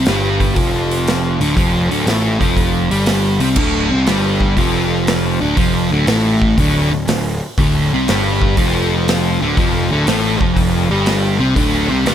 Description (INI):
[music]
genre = blues rock power trio and southern rock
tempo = 120 BPM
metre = 4/4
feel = swing 68% on 8ths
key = D minor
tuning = A4 = 440 Hz
[part]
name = sludgy distorted guitar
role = riff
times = 0.0-12.1 s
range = D2 to C4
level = -16 LUFS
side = equal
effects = overdrive
[part]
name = fuzz picked electric bass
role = bass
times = 0.0-12.1 s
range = D1 to C2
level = -20 LUFS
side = equal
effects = overdrive
[part]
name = big rock drum kit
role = drums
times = 0.1-12.1 s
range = crash cymbal, hi-hat, kick drum, snare drum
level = -19 LUFS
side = equal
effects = none
[sound]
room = little or no reverb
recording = none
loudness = -13 LUFS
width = side -10 dB against mid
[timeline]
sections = 0.0-3.6 A section; 3.6-12.1 A section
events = none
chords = 0.0 Dm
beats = 0.07 0.57 1.07 | 1.57 2.07 2.58 3.08 | 3.58 4.08 4.58 5.08 | 5.58 6.08 6.58 7.08 | 7.58 8.08 8.58 9.07 | 9.57 10.07 10.57 11.07 | 11.57 12.06